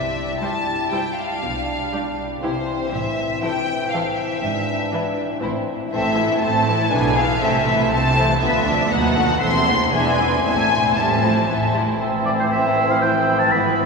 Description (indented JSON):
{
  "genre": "quick classical-period movement for symphony orchestra",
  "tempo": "120 BPM",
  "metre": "3/4",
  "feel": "straight",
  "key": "C major, A minor from 5.9 s",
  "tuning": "A4 = 440 Hz",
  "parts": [
    { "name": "clear studio violin section", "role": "melody", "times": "0.0-13.9 s", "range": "B4 to C6", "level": "-22 LUFS", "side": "left 2 dB", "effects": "none" },
    { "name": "mellow French horn section", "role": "sustained chords", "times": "0.0-13.9 s", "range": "E3 to E4", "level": "-26 LUFS", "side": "left 2 dB", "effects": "none" },
    { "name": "rich studio cello section", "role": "bass", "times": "0.0-13.9 s", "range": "D2 to C3", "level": "-27 LUFS", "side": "right 2 dB", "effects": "none" },
    { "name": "rich studio double bass section", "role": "bass", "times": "0.0-13.9 s", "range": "E1 to D#2", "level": "-27 LUFS", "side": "right 2 dB", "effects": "none" },
    { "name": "rich studio violin section", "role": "second line", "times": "0.4-13.9 s", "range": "C4 to E5", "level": "-27 LUFS", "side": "left 1 dB", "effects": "none" },
    { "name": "rich studio viola section", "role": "accompaniment", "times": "0.4-13.9 s", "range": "D3 to E4", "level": "-27 LUFS", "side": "right 1 dB", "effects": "none" },
    { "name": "silver concert flute", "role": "second line", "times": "12.0-13.9 s", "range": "E6", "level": "-26 LUFS", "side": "right 5 dB", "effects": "none" },
    { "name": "warm bassoon", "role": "accompaniment", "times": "12.0-13.9 s", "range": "B3 to C4", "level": "-22 LUFS", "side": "right 2 dB", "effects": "none" },
    { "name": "bright oboe", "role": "second line", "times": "12.3-13.9 s", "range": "C5 to B5", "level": "-21 LUFS", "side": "equal", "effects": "none" }
  ],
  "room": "wet cathedral reverb, RT60 6.4 s",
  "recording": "recorded in a church or concert hall, studio reverb",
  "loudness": "-17 LUFS",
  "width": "side -4 dB against mid",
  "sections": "0.0-12.0 A section; 12.0-13.9 B section",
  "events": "none",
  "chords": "0.0 C; 1.4 G7/B; 2.4 C; 2.9 Am; 4.4 E7/G#; 5.4 Am; 6.9 E7/B; 7.4 Am/C; 8.4 Bdim/D; 8.9 B7/D#; 9.4 Am/E; 9.9 E7; 10.4 Am",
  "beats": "0.42 0.92 | 1.43 1.93 2.43 | 2.93 3.43 3.93 | 4.43 4.93 5.42 | 5.92 6.42 6.92 | 7.42 7.92 8.41 | 8.91 9.42 9.93 | 10.45 10.97 11.49 | 12.00 12.51 13.02 | 13.52"
}